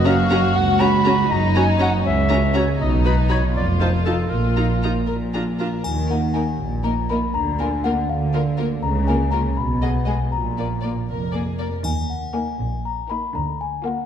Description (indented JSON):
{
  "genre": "cinematic, playful, whimsical film cue",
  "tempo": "80 BPM (dotted quarters)",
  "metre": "6/8",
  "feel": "straight",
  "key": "Eb minor",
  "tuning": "A4 = 440 Hz",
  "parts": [
    { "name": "warm chamber violin section", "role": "second line", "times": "0.0-14.0 s", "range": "Db4 to Bb4", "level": "-27 LUFS", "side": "left 3 dB", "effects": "none" },
    { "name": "warm clarinet", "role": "second line", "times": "0.0-5.1 s", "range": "A4 to Cb6", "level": "-23 LUFS", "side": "left 1 dB", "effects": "none" },
    { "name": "warm chamber viola section", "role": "accompaniment", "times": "0.0-14.0 s", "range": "Ab3 to Gb4", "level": "-27 LUFS", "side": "equal", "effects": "none" },
    { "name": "dark chamber cello section", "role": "bass", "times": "0.0-13.9 s", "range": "Db2 to Eb3", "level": "-24 LUFS", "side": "right 2 dB", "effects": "none" },
    { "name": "warm chamber double bass section", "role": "bass", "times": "0.0-13.9 s", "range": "F1 to Eb2", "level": "-22 LUFS", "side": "right 1 dB", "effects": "none" },
    { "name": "warm chamber violin section", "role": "melody", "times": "0.1-14.0 s", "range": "Bb4 to B5", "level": "-34 LUFS", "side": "left 5 dB", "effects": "none" },
    { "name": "celesta", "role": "melody", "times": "5.8-14.1 s", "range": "F5 to Cb6", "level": "-26 LUFS", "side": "left 8 dB", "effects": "none" },
    { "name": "triangle", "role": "percussion", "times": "5.8-6.8, 11.8-12.8 s", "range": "none", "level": "-36 LUFS", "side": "left 2 dB", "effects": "none" }
  ],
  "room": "moderate scoring stage reverb, RT60 1.9 s",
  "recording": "dark, warm production",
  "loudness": "-18 LUFS",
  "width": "side -9 dB against mid",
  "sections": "0.0-5.8 A section; 5.8-14.1 B section",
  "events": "none",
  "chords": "0.0 Gb; 2.8 B; 3.5 F7; 4.3 Bbsus4; 5.1 Bb; 5.8 Eb5; 7.3 Bb/D; 8.8 Bbm/Db; 9.6 Abm/Cb; 10.3 Bb; 11.8 Eb5; 13.3 Bb/D"
}